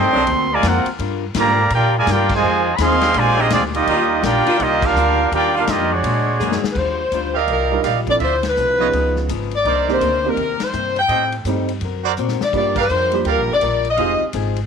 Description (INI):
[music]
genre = jazz, big band swing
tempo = 166 BPM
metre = 4/4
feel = swing 64% on 8ths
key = Eb major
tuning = A4 = 440 Hz
[part]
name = clear trumpet section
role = melody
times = 0.0-6.6 s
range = Ab3 to C6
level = -17 LUFS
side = right 1 dB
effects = none
[part]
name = brilliant trombone section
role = second line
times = 0.0-6.6 s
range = C3 to G4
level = -22 LUFS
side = right 11 dB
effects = none
[part]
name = picked steel-string acoustic guitar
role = accompaniment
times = 0.0-14.6 s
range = A2 to Bb4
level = -27 LUFS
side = left 14 dB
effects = none
[part]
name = edgy saxophone section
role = sustained chords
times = 0.0-6.8 s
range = C3 to Ab4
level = -25 LUFS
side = left 1 dB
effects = none
[part]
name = upright bass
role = bass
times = 0.0-14.7 s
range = F1 to Bb2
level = -23 LUFS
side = equal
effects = none
[part]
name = swinging big-band drum kit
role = drums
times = 0.3-14.6 s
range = crash cymbal, hi-hat, kick drum, ride cymbal, snare drum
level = -28 LUFS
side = left 5 dB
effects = none
[part]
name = clear saxophone section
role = melody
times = 6.7-14.2 s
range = Bb4 to G5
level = -18 LUFS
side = left 3 dB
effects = none
[part]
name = clear trumpet section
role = stabs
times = 7.3-14.1 s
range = Eb4 to F5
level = -23 LUFS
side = right 11 dB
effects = none
[part]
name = warm grand piano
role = accompaniment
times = 7.7-14.2 s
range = Eb3 to Bb4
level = -24 LUFS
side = right 13 dB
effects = none
[sound]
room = moderate spring reverb, RT60 1.4 s, studio ambience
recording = 1960s-style stereo with parts hard left and right, lossy compression artefacts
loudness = -15 LUFS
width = side -6 dB against mid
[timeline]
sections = 0.0-6.8 A section; 6.8-14.7 B section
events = band accent 2.3, 4.8, 8.4, 10.6, 12.7; drum fill 6.4-6.8, 12.2-12.5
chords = 0.3 D7alt; 1.0 Gm7; 2.4 Fm7; 3.2 Bb13; 3.9 Ebmaj9; 6.0 Bb7alt; 6.8 Ebmaj9; 8.2 Dm9; 8.9 Db9; 9.7 Cm9; 11.1 Am7b5; 11.8 Daug7; 12.5 Gm7; 14.0 Fm7